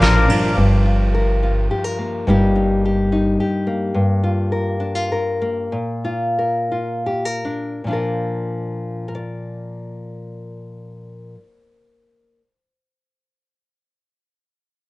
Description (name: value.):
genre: folk.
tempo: 72-107 BPM.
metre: 3/4.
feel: straight.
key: Bb major.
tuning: A4 = 438 Hz.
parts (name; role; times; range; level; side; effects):
pedal steel guitar; second line; 0.0-0.5 s; Bb4; -23 LUFS; left 3 dB; cassette tape, tape echo.
nylon-string guitar; accompaniment; 0.0-12.5 s; G2 to D5; -20 LUFS; left 1 dB; cassette tape.
chorused pulse-width pad; sustained chords; 0.0-0.6 s; Bb4 to D6; -27 LUFS; equal; cassette tape.
picked old ladder-braced acoustic guitar; arpeggios; 0.0-0.7 s; D4; -33 LUFS; right 1 dB; none.
upright bass; bass; 0.0-3.4 s; G1 to A1; -18 LUFS; equal; none.
room: light reverb.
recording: home recording on cassette, nothing above 10.9 kHz.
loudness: -17 LUFS.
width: side -20 dB against mid.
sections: 0.6-7.9 A section; 7.9-12.8 B section.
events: slowing down 3.9-7.9.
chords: 0.0 Bb; 0.6 Gm7; 2.3 Eb/G; 3.9 Gm7; 5.7 Bb.